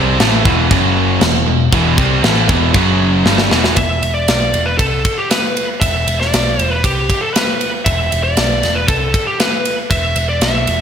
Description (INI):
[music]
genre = hard rock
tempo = 118 BPM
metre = 4/4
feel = straight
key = E minor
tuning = A4 = 440 Hz
[part]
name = overdriven semi-hollow guitar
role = riff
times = 0.0-3.8 s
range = E2 to C4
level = -18 LUFS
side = right 9 dB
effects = slapback echo
[part]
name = sludgy distorted guitar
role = riff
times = 0.0-3.8 s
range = E2 to C4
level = -19 LUFS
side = left 9 dB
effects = overdrive
[part]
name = tight distorted guitar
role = riff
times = 0.0-3.8 s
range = E2 to C4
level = -20 LUFS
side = equal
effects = distortion, slapback echo
[part]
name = hollow-body short-scale picked electric bass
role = bass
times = 0.0-10.8 s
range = E1 to C2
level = -18 LUFS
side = equal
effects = none
[part]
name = tight metal drum kit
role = drums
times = 0.2-10.8 s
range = crash cymbal, kick drum, ride cymbal, snare drum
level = -16 LUFS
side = equal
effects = none
[part]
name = high-gain lead guitar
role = melody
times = 3.8-10.8 s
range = G4 to E5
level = -17 LUFS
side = equal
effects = distortion, slapback echo
[sound]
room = moderate recital hall reverb, RT60 1.6 s, small room ambience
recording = big arena sound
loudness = -12 LUFS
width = side -8 dB against mid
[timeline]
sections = 0.0-3.8 A section; 3.8-10.8 B section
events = drum fill 3.3-3.8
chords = 0.0 Em; 0.7 F#5; 1.2 Em; 2.8 F#5; 3.3 Em; 3.8 E5